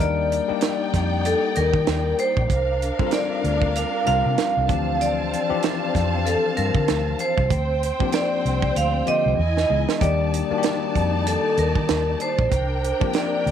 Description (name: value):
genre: lush 1970s-style soul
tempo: 96 BPM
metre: 4/4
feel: swing 58% on 16ths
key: unclear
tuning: A4 = 440 Hz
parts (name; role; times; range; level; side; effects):
- vibraphone with medium hard mallets; melody; 0.0-13.5 s; A4 to F5; -24 LUFS; right 1 dB; none
- warm studio string section; second line; 0.0-13.5 s; C4 to A5; -28 LUFS; equal; none
- bell-like tine electric piano; accompaniment; 0.0-13.5 s; D3 to Bb4; -27 LUFS; left 12 dB; none
- vintage muted fingered electric bass; bass; 0.0-13.5 s; Bb1 to Eb3; -24 LUFS; equal; none
- tight funk drum kit; drums; 0.3-13.5 s; hi-hat, kick drum, snare drum; -25 LUFS; right 4 dB; none
room: moderate spring reverb, RT60 2.3 s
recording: 1960s-style stereo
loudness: -19 LUFS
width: side -9 dB against mid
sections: 0.0-13.5 A section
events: drum fill 9.4-10.0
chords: 0.0 Ebmaj7; 2.5 C9sus4; 4.7 Dm11; 7.5 Bb69; 9.4 Emaj7; 10.0 Ebmaj7; 12.5 C9sus4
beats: | 0.00 0.62 1.25 1.88 | 2.50 3.13 3.75 4.38 | 5.00 5.63 6.26 6.88 | 7.51 8.13 8.76 9.39 | 10.01 10.64 11.27 11.89 | 12.52 13.14